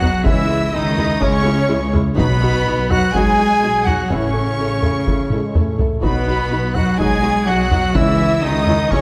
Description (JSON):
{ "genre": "cinematic, epic orchestral film score", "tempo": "125 BPM", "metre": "4/4", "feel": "straight", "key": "unclear", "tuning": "A4 = 440 Hz", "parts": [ { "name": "warm symphonic violin section", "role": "melody", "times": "0.0-9.0 s", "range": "B5 to G#6", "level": "-30 LUFS", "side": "equal", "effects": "none" }, { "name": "bright silver concert flute", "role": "second line", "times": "0.0-9.0 s", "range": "B4 to G#5", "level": "-27 LUFS", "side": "equal", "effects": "none" }, { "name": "warm symphonic violin section", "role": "second line", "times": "0.0-9.0 s", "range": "B4 to G#5", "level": "-30 LUFS", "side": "equal", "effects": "none" }, { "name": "dark symphonic viola section", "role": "accompaniment", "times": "0.0-9.0 s", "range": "G#3 to A4", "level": "-28 LUFS", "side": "equal", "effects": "none" }, { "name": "warm trumpet", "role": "stabs", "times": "0.0-9.0 s", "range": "B3 to G#4", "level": "-25 LUFS", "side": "equal", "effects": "none" }, { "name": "rich symphonic double bass section", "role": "bass", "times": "0.0-9.0 s", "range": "A1 to C#2", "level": "-24 LUFS", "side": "equal", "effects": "none" }, { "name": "warm symphonic cello section", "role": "bass", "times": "0.0-9.0 s", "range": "B2 to G#3", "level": "-24 LUFS", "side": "equal", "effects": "none" }, { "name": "taiko ensemble", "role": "drums", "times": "0.0-9.0 s", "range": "none", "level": "-23 LUFS", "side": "equal", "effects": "none" }, { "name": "timpani", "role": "percussion", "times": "0.2-0.9, 8.0-8.6 s", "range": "none", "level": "barely audible", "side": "none", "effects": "none" }, { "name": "warm French horn section", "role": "sustained chords", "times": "0.3-9.0 s", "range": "C#3 to E4", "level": "-30 LUFS", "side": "equal", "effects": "none" } ], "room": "moderate scoring stage reverb, RT60 1.9 s", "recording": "none", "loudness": "-17 LUFS", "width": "mono", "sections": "0.0-9.0 A section", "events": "drum fill 5.3-6.0", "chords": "0.3 C#m; 2.2 B; 4.1 A; 6.0 B; 8.0 C#m", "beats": "| 0.26 0.74 1.23 1.71 | 2.19 2.67 3.15 3.63 | 4.11 4.59 5.07 5.55 | 6.03 6.51 6.99 7.47 | 7.95 8.43 8.91" }